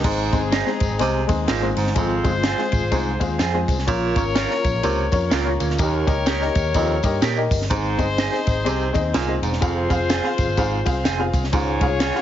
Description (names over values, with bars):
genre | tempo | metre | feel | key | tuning
uptempo 1960s-style soul | 125 BPM | 4/4 | swing 59% on 8ths | Ab major | A4 = 440 Hz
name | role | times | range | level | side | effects
warm upright piano | accompaniment | 0.0-12.2 s | Ab3 to Ab5 | -25 LUFS | left 4 dB | none
breathy baritone saxophone | riff | 0.0-11.9 s | Eb2 to C3 | -26 LUFS | right 5 dB | none
vintage muted picked electric bass | bass | 0.0-12.1 s | Fb1 to Bb2 | -25 LUFS | equal | none
compact cocktail drum kit | drums | 0.0-12.2 s | crash cymbal, hi-hat, kick drum, ride cymbal, snare drum | -24 LUFS | equal | none
tambourine | percussion | 0.0-12.1 s | none | -37 LUFS | left 6 dB | none
clear horn section | second line | 0.1-12.2 s | C4 to Db5 | -27 LUFS | left 4 dB | none
electric guitar through a small old amp | stabs | 0.5-12.2 s | C4 to Bb4 | -28 LUFS | right 8 dB | none
room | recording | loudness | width
studio reverb | heavily compressed radio sound, nothing above 7.5 kHz | -18 LUFS | side -11 dB against mid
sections
0.0-12.2 A section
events
upright piano fill 2.9-3.9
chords
0.0 Ab; 2.0 Fm; 3.9 Bbm; 5.8 Eb; 7.7 Ab; 9.6 Fm; 11.5 Db